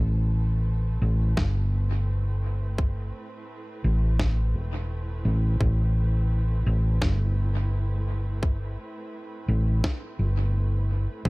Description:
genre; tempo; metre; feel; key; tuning
ambient dub; 85 BPM; 4/4; swing 56% on 16ths; A minor; A4 = 436 Hz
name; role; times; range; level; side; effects
muted studio string section; sustained chords; 0.0-11.3 s; A2 to B4; -40 LUFS; right 2 dB; none
hollow-body short-scale fingered electric bass; bass; 0.0-11.3 s; E1 to A1; -23 LUFS; equal; none
electronic kick drum; drums; 1.4-11.3 s; none; -26 LUFS; equal; overdrive
electronic snare drum; drums; 1.4-10.0 s; none; -34 LUFS; equal; dub echo
room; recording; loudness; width
digital ambience; echo-heavy mix; -23 LUFS; side -26 dB against mid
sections
0.0-11.3 A section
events
fade-in on string section 0.0-11.3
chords
0.0 Am7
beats
0.66 1.37 2.08 | 2.78 3.49 4.19 4.90 | 5.61 6.31 7.02 7.72 | 8.43 9.13 9.84 10.55 | 11.25

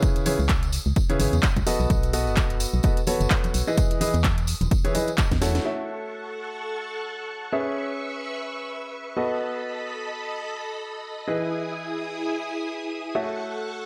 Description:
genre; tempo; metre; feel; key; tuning
piano house; 128 BPM; 4/4; swing 57% on 16ths; E major; A4 = 438 Hz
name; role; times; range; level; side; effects
warm baby grand piano; riff; 0.0-13.9 s; C#3 to E5; -31 LUFS; equal; sidechain pumping, digital delay
electronic kick drum; drums; 0.0-5.4 s; none; -25 LUFS; equal; none
house drum kit; drums; 0.0-5.6 s; handclaps, hi-hat, snare drum; -32 LUFS; equal; overdrive
tambourine and congas; percussion; 0.0-5.6 s; none; -35 LUFS; equal; none
organ-like FM bass; bass; 0.4-5.6 s; E1 to E2; -27 LUFS; equal; sidechain pumping
string machine, violins; sustained chords; 5.7-13.9 s; E4 to D#6; -33 LUFS; equal; ensemble chorus, sidechain pumping
room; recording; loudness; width
light reverb, digital ambience; none; -26 LUFS; mono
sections
0.0-5.7 A section; 5.7-13.9 B section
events
drum fill 5.3-5.7; band accent 5.5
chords
0.0 C#m7; 1.7 B7; 3.8 Emaj7; 5.7 A6; 7.5 C#m7; 9.2 B7; 11.3 Emaj7; 13.2 A6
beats
| 0.03 0.49 0.96 1.43 | 1.90 2.37 2.84 3.31 | 3.77 4.24 4.71 5.18 | 5.65 6.12 6.59 7.06 | 7.53 7.99 8.46 8.93 | 9.40 9.87 10.34 10.81 | 11.28 11.74 12.21 12.68 | 13.15 13.62

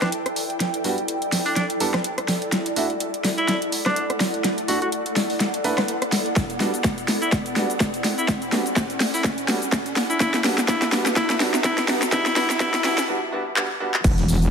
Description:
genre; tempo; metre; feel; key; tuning
bass house; 125 BPM; 4/4; swing 56% on 16ths; E minor; A4 = 440 Hz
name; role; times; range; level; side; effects
bright alto saxophone; melody; 0.0-13.0 s; D4 to F#4; -27 LUFS; left 1 dB; vintage 12-bit sampler grit, dub echo
big-room dance drum kit; drums; 0.0-14.5 s; crash cymbal, handclaps, hi-hat, rim click, shaker, snare drum; -23 LUFS; equal; overdrive, small room reverb
riser and impact; sound effects; 0.4-14.5 s; none; -32 LUFS; equal; none
ethereal airy pad; texture; 0.0-13.1 s; E4 to A5; -28 LUFS; equal; ensemble chorus, built-in reverb, sidechain pumping
clear grand piano; stabs; 0.8-13.9 s; G3 to B4; -29 LUFS; right 3 dB; vintage 12-bit sampler grit, sidechain pumping, low-pass filter, dub echo
electronic kick drum; drums; 6.4-14.2 s; none; -24 LUFS; equal; overdrive, small room reverb
metallic wobble bass; bass; 14.0-14.5 s; E1; -19 LUFS; equal; chorus, sidechain pumping
crisp fusion drum kit; drums; 14.0-14.5 s; hi-hat, snare drum, tambourine; -37 LUFS; left 2 dB; sidechain pumping on hats, high-pass filter on hats, small room reverb, high-pass filter on snare, sidechain pumping on perc, high-pass filter on perc, high-pass filter on room
room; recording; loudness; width
moderate lush hall reverb, RT60 2.1 s; high-pass filter; -20 LUFS; side -6 dB against mid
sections
0.0-14.0 A section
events
build-up 0.0-14.0; drum fill 0.0-13.1, 13.6-14.0; riser 0.4-13.1; break 13.1-14.0; impact 14.0-14.5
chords
0.0 Em7; 2.5 Dadd9; 6.4 Em7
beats
0.12 | 0.60 1.08 1.56 2.04 | 2.52 3.00 3.48 3.96 | 4.44 4.92 5.40 5.88 | 6.36 6.84 7.32 7.80 | 8.28 8.76 9.24 9.72 | 10.20 10.68 11.16 11.64 | 12.12 12.60 13.08 13.56 | 14.04

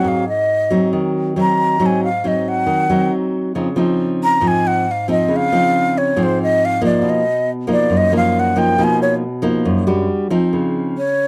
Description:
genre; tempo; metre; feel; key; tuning
bossa nova; 137 BPM; 4/4; straight; Db major; A4 = 444 Hz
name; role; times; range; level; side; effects
breathy jazz flute; melody; 0.0-11.3 s; C5 to Bb5; -19 LUFS; equal; none
nylon-string guitar; accompaniment; 0.0-11.3 s; Gb2 to Gb4; -19 LUFS; equal; none
room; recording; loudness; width
small room ambience; dry, close 1970s-style studio recording; -17 LUFS; mono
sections
0.0-10.5 A section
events
flute solo 0.0-10.5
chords
0.1 Ab7; 3.1 Cdim/Gb; 3.5 Dbmaj9; 7.0 Cbmaj7#11; 10.1 Ebmaj13; 10.5 Dbmaj9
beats
| 0.05 0.49 0.93 1.36 | 1.80 2.24 2.67 3.11 | 3.55 3.98 4.42 4.86 | 5.30 5.73 6.17 6.61 | 7.04 7.48 7.91 8.35 | 8.79 9.22 9.66 10.10 | 10.53 10.97

